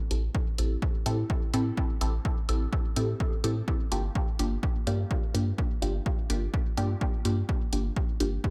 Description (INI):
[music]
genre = dub techno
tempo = 126 BPM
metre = 4/4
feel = swing 55% on 16ths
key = unclear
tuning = A4 = 440 Hz
[part]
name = filtered dub chord stab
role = stabs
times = 0.1-8.4 s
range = Bb3 to A4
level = -35 LUFS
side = equal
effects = phaser, sidechain pumping, dub echo
[part]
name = soft dub sub bass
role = bass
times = 0.1-8.4 s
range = G1 to A2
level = -31 LUFS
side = equal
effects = sidechain pumping
[part]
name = electronic hi-hat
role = drums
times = 0.1-8.3 s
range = none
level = -40 LUFS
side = equal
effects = none
[part]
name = electronic kick drum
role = drums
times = 0.3-8.5 s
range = none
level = -31 LUFS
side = equal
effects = none
[sound]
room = light reverb, digital ambience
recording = none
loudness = -29 LUFS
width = mono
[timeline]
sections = 0.0-8.5 A section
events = none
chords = 0.0 Am7; 3.7 Gm7